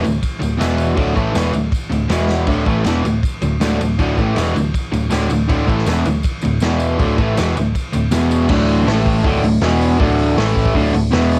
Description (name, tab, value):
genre	garage rock duo or trio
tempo	160 BPM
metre	4/4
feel	straight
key	unclear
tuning	A4 = 440 Hz
part	raw garage guitar	riff	0.0-11.4 s	D2 to A3	-19 LUFS	equal	overdrive, cassette tape
part	hollow-body short-scale picked electric bass	bass	0.0-11.4 s	D1 to A1	-22 LUFS	equal	overdrive
part	vintage drum kit	drums	0.0-11.4 s	crash cymbal, hi-hat, kick drum, ride cymbal, snare drum	-23 LUFS	equal	none
part	tambourine	percussion	0.1-8.4 s	none	-40 LUFS	equal	none
room	light reverb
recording	home recording on cassette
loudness	-17 LUFS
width	mono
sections	0.0-8.5 A section; 8.5-11.4 B section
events	drum fill 2.3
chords	0.0 D5; 0.6 E5; 1.0 D5; 2.1 E5; 2.5 D5; 6.6 E5; 7.0 D5; 8.1 E5; 8.5 D5; 8.9 A5; 9.3 D5; 9.6 E5; 10.0 D5; 10.4 A5; 10.8 D5